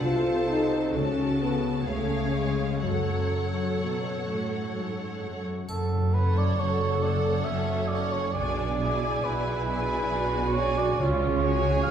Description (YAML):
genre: classical, slow romantic movement for symphony orchestra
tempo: 61-71 BPM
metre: 3/4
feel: rubato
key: F# minor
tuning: A4 = 438 Hz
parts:
  - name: rich studio violin section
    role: melody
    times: 0.0-11.9 s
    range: E#5 to A5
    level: -38 LUFS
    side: left 1 dB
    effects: none
  - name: rich studio violin section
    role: second line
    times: 0.0-11.9 s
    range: G#4 to D5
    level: -35 LUFS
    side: left 2 dB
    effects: none
  - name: rich studio viola section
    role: accompaniment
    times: 0.0-11.9 s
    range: C#4 to A4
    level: -33 LUFS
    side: right 2 dB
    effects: none
  - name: mellow French horn section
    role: sustained chords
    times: 0.0-4.7 s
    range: F#3 to E#4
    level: -29 LUFS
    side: left 2 dB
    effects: none
  - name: concert harp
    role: arpeggios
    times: 0.0-11.9 s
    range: F#2 to B4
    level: -33 LUFS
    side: left 6 dB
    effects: none
  - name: clear studio cello section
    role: bass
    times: 0.0-11.9 s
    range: F#2 to C#3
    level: -32 LUFS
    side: right 3 dB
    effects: none
  - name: rich studio double bass section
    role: bass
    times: 0.0-11.9 s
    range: F#1 to C#2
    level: -31 LUFS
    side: right 2 dB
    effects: none
  - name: mellow cor anglais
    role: second line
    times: 5.7-11.9 s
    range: A4 to E#5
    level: -29 LUFS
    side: right 4 dB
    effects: none
  - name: triangle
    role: percussion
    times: 5.7-7.4 s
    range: none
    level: -47 LUFS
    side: left 2 dB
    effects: none
room: wet recital hall reverb, RT60 1.7 s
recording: heard from further back in the room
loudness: -24 LUFS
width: side -8 dB against mid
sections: 0.0-5.7 A section; 5.7-11.9 A section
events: none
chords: 0.0 Cdim7; 0.9 F#m/C#; 1.8 C#7; 2.8 F#m; 8.3 G#dim/B; 11.0 C#